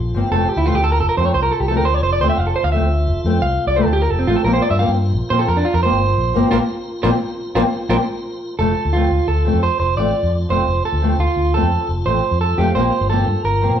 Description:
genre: highlife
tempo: 116 BPM (dotted quarters)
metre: 12/8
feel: straight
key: F major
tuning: A4 = 440 Hz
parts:
  - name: tonewheel organ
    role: sustained chords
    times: 0.0-13.8 s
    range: Bb3 to C5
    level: -29 LUFS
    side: equal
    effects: slow rotary speaker
  - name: fingered electric bass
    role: bass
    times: 0.0-13.8 s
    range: F1 to Bb2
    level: -19 LUFS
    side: left 1 dB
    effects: none
  - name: fingerpicked old ladder-braced acoustic guitar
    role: accompaniment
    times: 0.1-13.7 s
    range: F3 to C4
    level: -21 LUFS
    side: left 3 dB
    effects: none
  - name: electric guitar at the edge of break-up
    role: arpeggios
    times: 0.3-13.8 s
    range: C4 to F5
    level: -19 LUFS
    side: right 3 dB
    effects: none
room: wet large studio reverb, RT60 1.2 s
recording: band playing live in one room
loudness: -15 LUFS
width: side -9 dB against mid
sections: 0.0-8.6 A section; 8.6-13.8 B section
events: clean electric guitar solo 0.0-8.6; band accent 6.5-8.6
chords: 0.3 F; 4.5 Bbsus2; 8.6 F; 12.8 Bbsus2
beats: | 0.32 0.84 1.35 1.87 | 2.39 2.90 3.42 3.94 | 4.46 4.97 5.49 6.01 | 6.52 7.04 7.56 8.08 | 8.60 9.12 9.63 10.15 | 10.68 11.19 11.71 12.23 | 12.75 13.27 13.79

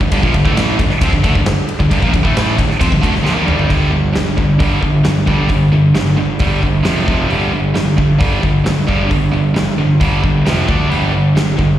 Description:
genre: hard rock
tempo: 133 BPM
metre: 4/4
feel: straight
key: unclear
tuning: A4 = 438 Hz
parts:
  - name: high-gain distorted guitar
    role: riff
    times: 0.0-11.8 s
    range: F2 to D4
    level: -21 LUFS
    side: left 9 dB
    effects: distortion, slapback echo
  - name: tight distorted guitar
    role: riff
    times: 0.0-11.8 s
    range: F2 to D4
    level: -16 LUFS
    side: right 3 dB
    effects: distortion, slapback echo
  - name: fuzz picked electric bass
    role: bass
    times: 0.0-11.8 s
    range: F1 to F2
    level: -18 LUFS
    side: left 1 dB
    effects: overdrive
  - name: huge arena drum kit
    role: drums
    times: 0.0-11.7 s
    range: crash cymbal, hi-hat, kick drum, ride cymbal, snare drum, toms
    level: -17 LUFS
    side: equal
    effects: none
room: little or no reverb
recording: live gig heard through the venue's PA, recital hall reverb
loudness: -12 LUFS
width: side -12 dB against mid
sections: 0.0-3.7 A section; 3.7-11.8 B section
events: drum fill 3.3-3.7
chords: 0.0 Gm; 3.7 G5; 6.9 F5; 7.3 G5; 10.5 F5; 10.7 D5; 10.9 G5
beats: | 0.11 0.56 1.01 1.46 | 1.91 2.36 2.81 3.26 | 3.71 4.16 4.61 5.06 | 5.51 5.96 6.41 6.86 | 7.31 7.76 8.21 8.66 | 9.11 9.56 10.01 10.46 | 10.91 11.36

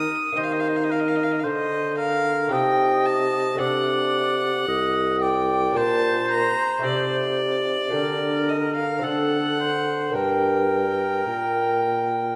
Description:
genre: classical, baroque-style sonata movement with continuo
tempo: 55 BPM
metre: 3/4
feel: straight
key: G minor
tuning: A4 = 439 Hz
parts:
  - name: warm violin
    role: melody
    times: 0.0-12.4 s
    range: D5 to Eb6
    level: -28 LUFS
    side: equal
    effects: none
  - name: warm oboe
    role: second line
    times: 0.0-12.4 s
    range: A4 to Eb5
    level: -29 LUFS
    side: equal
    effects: none
  - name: lute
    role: accompaniment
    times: 0.0-12.4 s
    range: G2 to Bb4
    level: -31 LUFS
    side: equal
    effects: none
  - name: mellow bassoon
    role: bass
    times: 0.0-12.4 s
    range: C2 to Eb3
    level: -27 LUFS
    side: equal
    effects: none
room: wet recital hall reverb, RT60 1.4 s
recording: none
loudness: -22 LUFS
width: mono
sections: 0.0-12.4 A section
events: none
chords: 0.0 Eb; 2.5 Adim/C; 3.6 D7/C; 5.8 Gm/Bb; 6.8 Adim/C; 7.9 Gm/D; 9.0 D7; 10.2 Gm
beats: | 0.36 1.44 2.52 | 3.60 4.68 5.76 | 6.85 7.94 9.04 | 10.15 11.27

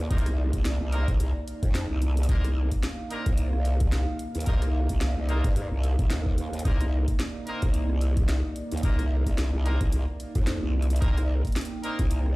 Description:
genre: glitch hop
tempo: 110 BPM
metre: 4/4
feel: swing 57% on 16ths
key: C minor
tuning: A4 = 442 Hz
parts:
  - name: dark analog pad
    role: sustained chords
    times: 0.0-12.4 s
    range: Bb3 to G5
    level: -35 LUFS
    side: right 1 dB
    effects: chorus, phaser, sidechain pumping
  - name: growl bass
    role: bass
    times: 0.0-12.4 s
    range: C2 to G2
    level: -25 LUFS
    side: equal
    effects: chorus, overdrive
  - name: brilliant horn section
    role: stabs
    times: 0.1-12.0 s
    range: Bb3 to Bb4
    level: -38 LUFS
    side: equal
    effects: sidechain pumping, dub echo
  - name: drum and bass drum kit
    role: drums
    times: 0.1-12.4 s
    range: hi-hat, rim click, snare drum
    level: -36 LUFS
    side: equal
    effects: overdrive
  - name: electronic kick drum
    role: drums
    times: 0.1-12.1 s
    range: none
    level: -24 LUFS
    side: equal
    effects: none
room: little or no reverb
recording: played on a big sound system in a bare room, large studio reverb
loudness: -24 LUFS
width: side -21 dB against mid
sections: 0.0-12.4 A section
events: none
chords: 0.0 Cm9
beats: | 0.11 0.65 1.20 1.74 | 2.29 2.83 3.38 3.92 | 4.47 5.02 5.56 6.11 | 6.65 7.20 7.74 8.29 | 8.83 9.38 9.93 10.47 | 11.02 11.56 12.11

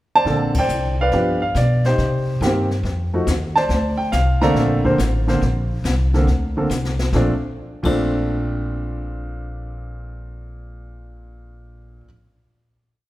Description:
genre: jazz piano trio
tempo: 140 BPM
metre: 4/4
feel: swing 68% on 8ths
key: Bb major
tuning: A4 = 440 Hz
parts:
  - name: clear baby grand piano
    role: melody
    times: 0.2-12.1 s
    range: Bb2 to Bb5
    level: -19 LUFS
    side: right 1 dB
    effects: none
  - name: upright bass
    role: bass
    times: 0.3-12.0 s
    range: A1 to C3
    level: -21 LUFS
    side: equal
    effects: none
  - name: jazz brush drum kit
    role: drums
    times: 0.3-7.9 s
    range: brushed snare drum, crash cymbal, hi-hat, kick drum, ride cymbal, snare drum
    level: -28 LUFS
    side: left 2 dB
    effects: none
room: moderate recital hall reverb, RT60 1.7 s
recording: recorded in a church or concert hall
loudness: -17 LUFS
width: side -16 dB against mid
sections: 0.0-0.3 pickup bar; 0.3-7.1 A section; 7.1-10.5 final chord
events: band accent 0.5; drum fill 6.7-7.1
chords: 0.3 Bbmaj9; 1.1 G7; 2.0 Cm7; 2.8 F7; 3.7 Bbmaj9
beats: | 0.26 0.69 1.12 1.55 | 1.98 2.41 2.84 3.27 | 3.70 4.13 4.56 4.99 | 5.42 5.84 6.27 6.70 | 7.13 7.55 7.98 8.41 | 8.83 9.26 9.69 10.12

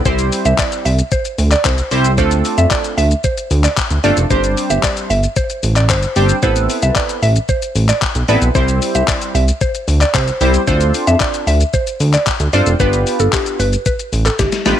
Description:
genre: dance-pop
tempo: 113 BPM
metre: 4/4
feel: straight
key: C major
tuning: A4 = 440 Hz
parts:
  - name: mallet-like synth pluck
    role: melody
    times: 0.1-14.8 s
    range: G4 to E5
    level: -19 LUFS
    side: right 1 dB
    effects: chorus, sidechain pumping, slapback echo
  - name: chorused retro synth keys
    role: accompaniment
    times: 0.1-14.8 s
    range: G3 to C5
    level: -18 LUFS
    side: right 1 dB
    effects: sidechain pumping
  - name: chorused synth bass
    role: bass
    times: 0.1-14.7 s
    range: F1 to F2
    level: -14 LUFS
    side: right 1 dB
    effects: sidechain pumping
  - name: gated 80s digital drum machine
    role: drums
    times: 0.1-14.8 s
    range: handclaps, hi-hat, kick drum, shaker, snare drum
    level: -19 LUFS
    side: left 3 dB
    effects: gated reverb, gated reverb snare
room: little or no reverb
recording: 1960s-style stereo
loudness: -12 LUFS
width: side -10 dB against mid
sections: 0.0-14.8 A section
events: drum fill 14.4-14.8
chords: 0.1 C; 2.2 Dm7; 4.3 Gsus4; 6.4 Amadd9; 8.6 C; 10.7 Dm7; 12.8 G7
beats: | 0.06 0.59 1.12 1.65 | 2.18 2.71 3.24 3.77 | 4.30 4.83 5.37 5.90 | 6.43 6.96 7.49 8.02 | 8.55 9.08 9.61 10.14 | 10.68 11.21 11.74 12.27 | 12.80 13.33 13.86 14.39

